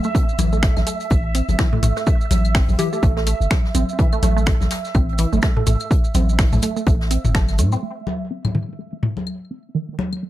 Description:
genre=minimal techno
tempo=125 BPM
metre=4/4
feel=swing 58% on 16ths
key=A minor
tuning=A4 = 442 Hz
part: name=resonant blip pluck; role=riff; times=0.0-10.3 s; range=E3 to A4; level=-26 LUFS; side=right 2 dB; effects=chorus, phaser, sidechain pumping, tape echo
part: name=maracas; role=percussion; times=0.0-7.8 s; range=none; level=-33 LUFS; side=right 4 dB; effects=none
part: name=bubbling stepped-filter texture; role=texture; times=0.0-7.8 s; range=E5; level=-30 LUFS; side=right 6 dB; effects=chorus, built-in reverb, sidechain pumping
part: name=electronic kick drum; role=drums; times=0.1-7.5 s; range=none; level=-18 LUFS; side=equal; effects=none
part: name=jazz brush drum kit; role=drums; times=0.2-7.8 s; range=hi-hat, snare drum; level=-34 LUFS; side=left 2 dB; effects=sidechain pumping on hats, high-pass filter on hats, high-pass filter on snare, high-pass filter on room
part: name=punchy sub bass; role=bass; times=0.4-7.8 s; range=G1 to A2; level=-19 LUFS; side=equal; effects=sidechain pumping
part: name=punchy analog drum machine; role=drums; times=0.4-7.7 s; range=finger snaps, hi-hat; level=-26 LUFS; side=equal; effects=low-pass filter on hats, low-pass filter on snare
part: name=electronic congas, claves and toms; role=percussion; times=0.4-10.2 s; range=none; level=-24 LUFS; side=left 2 dB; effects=none
part: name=soft struck synth lead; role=melody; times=2.8-3.0 s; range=G4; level=-26 LUFS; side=left 6 dB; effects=chorus, tape echo
room=light reverb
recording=none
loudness=-17 LUFS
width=side -14 dB against mid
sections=0.0-7.8 A section; 7.8-10.3 B section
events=drop 0.0-7.8; filter sweep on synth arpeggio sound 7.8-10.3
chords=0.0 A5; 7.8 Am

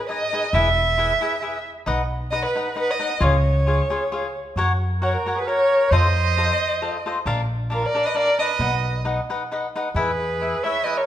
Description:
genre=mexican folk, mariachi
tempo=134 BPM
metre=3/4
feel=swing 53% on 8ths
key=unclear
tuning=A4 = 438 Hz
part: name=dark violin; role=melody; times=0.0-11.1 s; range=A#4 to E5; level=-22 LUFS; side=equal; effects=none
part: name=cavaquinho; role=accompaniment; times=0.1-11.0 s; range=D4 to F#5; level=-26 LUFS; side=left 2 dB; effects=none
part: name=upright bass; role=bass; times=0.5-10.5 s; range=E1 to F#2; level=-22 LUFS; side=equal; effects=none
part: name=clear trumpet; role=second line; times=5.0-11.1 s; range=E#4 to C#5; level=-28 LUFS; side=right 6 dB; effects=none
room=moderate recital hall reverb, RT60 1.8 s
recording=minimal, uncompressed stereo recording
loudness=-19 LUFS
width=side -11 dB against mid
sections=0.0-11.1 A section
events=none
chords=0.0 G#m; 0.5 E; 1.9 B; 3.2 C#; 4.6 F#; 5.9 F7; 7.3 A#; 8.6 B; 10.0 E

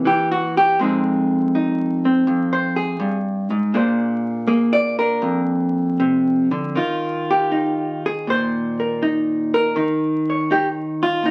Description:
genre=solo jazz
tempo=81 BPM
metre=4/4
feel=swing 69% on 8ths, rubato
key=Eb major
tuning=A4 = 440 Hz
part: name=vintage hollow-body jazz guitar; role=solo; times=0.0-11.3 s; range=F2 to D5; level=-20 LUFS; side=equal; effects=none
room=wet studio reverb, RT60 0.6 s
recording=very old 78 rpm record, vinyl crackle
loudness=-20 LUFS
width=mono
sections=0.0-6.8 A section; 6.8-11.3 B section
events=hollow-body jazz guitar solo 0.0-6.8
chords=0.0 C7b9 (rootless); 0.8 Fm9; 3.7 Bb9; 6.8 Eb; 9.8 Eb5

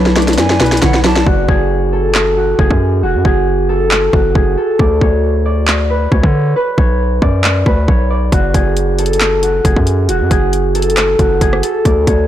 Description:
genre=hip hop, trap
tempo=136 BPM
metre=4/4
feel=half-time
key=F# minor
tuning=A4 = 440 Hz
part: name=concert harp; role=melody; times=0.0-12.3 s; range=F#4 to D5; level=-15 LUFS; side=right 1 dB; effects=low-pass filter, digital delay
part: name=glassy wavetable pluck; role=accompaniment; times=0.0-1.3 s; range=B2 to A3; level=-19 LUFS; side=equal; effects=chorus, low-pass filter
part: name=airy breathy pad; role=sustained chords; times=0.0-1.2 s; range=F#3 to A4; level=-23 LUFS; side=left 6 dB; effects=none
part: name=distorted 808-style bass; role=bass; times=0.0-12.3 s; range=E1 to D3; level=-15 LUFS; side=equal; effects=distortion
part: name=trap drum kit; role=drums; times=0.1-12.2 s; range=handclaps, hi-hat, kick drum, rim click, snare drum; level=-14 LUFS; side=equal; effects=overdrive
part: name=breathy mellow silver concert flute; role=second line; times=0.4-1.3 s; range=F#5 to A5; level=-23 LUFS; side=right 4 dB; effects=digital delay
room=little or no reverb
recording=blown-out, overdriven recording, overdrive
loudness=-10 LUFS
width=side -11 dB against mid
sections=0.0-1.3 A section; 1.3-12.3 B section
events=drum fill 0.0-1.3; hi-hats muted 1.3-8.3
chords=0.0 Bm7; 1.3 F#m; 4.8 Bmadd9/D; 6.6 Bm; 8.3 F#m

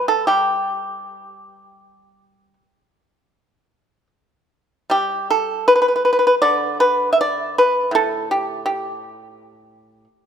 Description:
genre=chinese traditional, Chinese solo plucked strings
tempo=73-84 BPM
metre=4/4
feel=rubato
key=G gong mode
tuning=A4 = 440 Hz
part: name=pipa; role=solo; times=0.0-10.1 s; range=A2 to E5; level=-16 LUFS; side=equal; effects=none
room=moderate scoring stage reverb, RT60 2.1 s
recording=none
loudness=-16 LUFS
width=side -8 dB against mid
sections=0.0-4.9 A section; 4.9-10.3 B section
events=none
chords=none

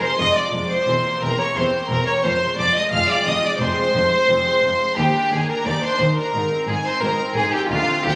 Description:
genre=classical, baroque-style concerto movement with solo episodes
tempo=88 BPM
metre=4/4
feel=straight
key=unclear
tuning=A4 = 440 Hz
part: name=rich violin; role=melody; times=0.0-8.2 s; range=F4 to F5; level=-24 LUFS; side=equal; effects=none
part: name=rich chamber violin section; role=second line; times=0.0-8.1 s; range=F4 to F5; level=-25 LUFS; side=equal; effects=none
part: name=clear studio viola section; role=accompaniment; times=0.0-8.2 s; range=F3 to Eb4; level=-34 LUFS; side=equal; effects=none
part: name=lute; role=accompaniment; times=0.0-8.2 s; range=D2 to Ab4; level=-35 LUFS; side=equal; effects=none
part: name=clear studio violin section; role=melody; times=0.1-8.2 s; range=F5 to F6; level=-28 LUFS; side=equal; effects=none
part: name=clear studio double bass section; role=bass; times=0.2-8.1 s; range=E1 to Eb2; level=-31 LUFS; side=equal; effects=none
part: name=rich studio cello section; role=bass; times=0.2-8.1 s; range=D2 to Ab2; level=-31 LUFS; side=equal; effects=none
room=moderate concert hall reverb, RT60 2.3 s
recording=recorded on a phone in the room, studio reverb, compression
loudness=-20 LUFS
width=mono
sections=0.0-8.2 A section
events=none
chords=0.0 Fm; 0.9 C7/E; 2.2 Fm; 5.0 Ebmaj7; 6.3 Ab

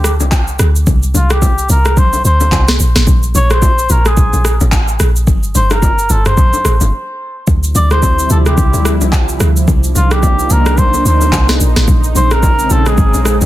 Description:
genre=amapiano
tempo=109 BPM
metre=4/4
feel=swing 58% on 16ths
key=unclear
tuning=A4 = 441 Hz
part: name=trumpet with cup mute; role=melody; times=0.0-13.4 s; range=F4 to D5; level=-17 LUFS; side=equal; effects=digital delay
part: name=deep log drum bass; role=bass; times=0.0-13.5 s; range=G1 to D2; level=-12 LUFS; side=equal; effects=none
part: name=smooth R&B drum kit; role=drums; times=0.0-13.5 s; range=handclaps, kick drum, rim click, shaker, snare drum, toms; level=-14 LUFS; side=equal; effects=overdrive
part: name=bongos and congas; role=percussion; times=0.2-13.5 s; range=none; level=-23 LUFS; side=left 7 dB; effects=none
part: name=warm analog pad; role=sustained chords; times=7.9-13.5 s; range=C3 to E4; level=-18 LUFS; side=right 1 dB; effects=chorus, sidechain pumping
room=little or no reverb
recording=dense, heavily limited modern master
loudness=-9 LUFS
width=side -15 dB against mid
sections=0.0-13.5 A section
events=break 6.9-7.5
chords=0.0 D7(no3); 0.9 Csus2; 3.1 Bb7(no3); 5.3 N.C.; 7.5 Dm11; 9.7 Cm11; 11.9 Bbm11

